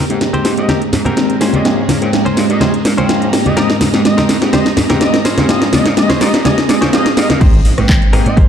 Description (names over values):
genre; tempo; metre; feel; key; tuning
filtered disco house; 125 BPM; 4/4; swing 53% on 16ths; Ab major; A4 = 440 Hz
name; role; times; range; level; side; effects
string machine, full ensemble; sustained chords; 0.0-8.5 s; Ab3 to C6; -20 LUFS; right 2 dB; ensemble chorus, sidechain pumping, low-pass filter
direct-recorded clean electric guitar; riff; 0.0-8.5 s; C4 to Bb5; -23 LUFS; equal; vintage 12-bit sampler grit, sidechain pumping, low-pass filter
slap bass; bass; 0.0-8.5 s; Ab1 to Bb2; -21 LUFS; equal; sidechain pumping, high-pass filter, low-pass filter
mellow tine electric piano; accompaniment; 0.1-8.5 s; Ab3 to G5; -18 LUFS; equal; medium stereo tremolo, phaser, sidechain pumping, low-pass filter
house drum kit; drums; 0.1-8.5 s; crash cymbal, handclaps, hi-hat, rim click, snare drum; -14 LUFS; equal; overdrive, sidechain pumping on hats, sidechain pumping on cymbals
tambourine and congas; percussion; 0.1-7.4 s; none; -21 LUFS; left 2 dB; sidechain pumping on perc, low-pass filter on perc
warm trumpet section; melody; 0.6-8.4 s; Eb5; -22 LUFS; left 1 dB; vintage 12-bit sampler grit, sidechain pumping, low-pass filter
swell and impact; sound effects; 6.7-8.5 s; none; -20 LUFS; right 1 dB; none
electronic kick drum; drums; 7.4-8.5 s; none; -10 LUFS; equal; overdrive
room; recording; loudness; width
wet echo chamber reverb, RT60 2.1 s; dark, warm production; -10 LUFS; side -8 dB against mid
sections
0.0-7.4 A section; 7.4-8.5 B section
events
build-up 0.0-7.4; drum fill 0.0-7.4; filter sweep on trumpet section 0.0-7.4; clean electric guitar fill 6.0-7.4; drop 7.4-8.5; impact 7.4-8.5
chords
0.0 Abmaj9; 1.4 Bbm9; 3.6 Abmaj9; 5.3 Bbm9; 7.4 Abmaj9